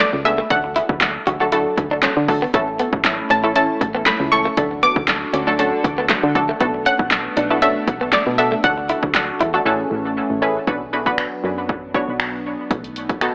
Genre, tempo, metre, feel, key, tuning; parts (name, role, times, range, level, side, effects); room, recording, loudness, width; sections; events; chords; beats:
dance-pop; 118 BPM; 4/4; straight; A4 = 440 Hz
analog pluck; melody; 0.0-9.1 s; D5 to D6; -20 LUFS; equal; chorus, dub echo
direct-recorded clean electric guitar; riff; 0.0-9.6 s; A3 to F#4; -22 LUFS; equal; lush chorus
solid FM bass; bass; 0.0-13.3 s; A1 to D3; -26 LUFS; equal; sidechain pumping
punchy chord stab; accompaniment; 0.2-13.3 s; E3 to C#5; -22 LUFS; equal; chorus, sidechain pumping, dub echo
punchy analog drum machine; drums; 0.3-13.3 s; finger snaps, handclaps, hi-hat, kick drum, snare drum; -20 LUFS; equal
chorused pulse-width pad; sustained chords; 2.5-13.3 s; D3 to A4; -27 LUFS; equal; sidechain pumping
moderate plate reverb, RT60 2.0 s; echo-heavy mix, AM radio sound; -16 LUFS; side -36 dB against mid
0.0-10.7 A section; 10.7-13.3 B section
drums muted 9.7-10.7
0.0 Bm7; 0.5 D; 2.5 A; 4.6 D; 6.6 Bm7; 8.6 D; 9.7 Amaj7; 10.7 Bm; 12.7 B7
0.00 | 0.51 1.01 1.52 2.03 | 2.54 3.05 3.56 4.07 | 4.57 5.08 5.59 6.10 | 6.61 7.12 7.62 8.13 | 8.64 9.15 9.66 10.17 | 10.68 11.18 11.69 12.20 | 12.71 13.22